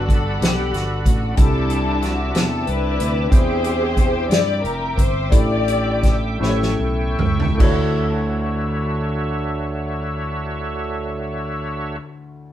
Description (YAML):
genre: slow gospel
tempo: 48-62 BPM (dotted quarters)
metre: 6/8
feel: straight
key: D major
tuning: A4 = 441 Hz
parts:
  - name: muted studio string section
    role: melody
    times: 0.0-6.4 s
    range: D4 to D5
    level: -23 LUFS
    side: left 3 dB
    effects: none
  - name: clear upright piano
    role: accompaniment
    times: 0.0-12.5 s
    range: D2 to G5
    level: -27 LUFS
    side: left 2 dB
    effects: none
  - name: bright tonewheel organ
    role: sustained chords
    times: 0.0-12.0 s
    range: C4 to D6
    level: -27 LUFS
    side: right 1 dB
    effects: fast rotary speaker, overdrive, chorus vibrato
  - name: fingered electric bass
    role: bass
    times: 0.0-12.0 s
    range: F1 to G2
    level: -23 LUFS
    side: equal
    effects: none
  - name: natural country drum kit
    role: drums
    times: 0.1-7.8 s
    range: crash cymbal, hi-hat, kick drum, snare drum, toms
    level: -18 LUFS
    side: equal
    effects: none
room: moderate studio reverb, RT60 0.8 s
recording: band playing live in one room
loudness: -17 LUFS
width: side -12 dB against mid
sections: 0.0-7.6 A section; 7.6-12.5 B section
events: slowing down 3.3-7.6; drum fill 6.4-7.6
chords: 0.0 Gmaj9; 1.4 C69; 3.3 E7alt; 5.3 A7sus4; 6.4 A7; 7.6 Dmaj9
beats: 0.41 | 1.38 2.35 | 3.32 4.30 | 5.32 6.41 | 7.60 8.85 | 10.10 11.36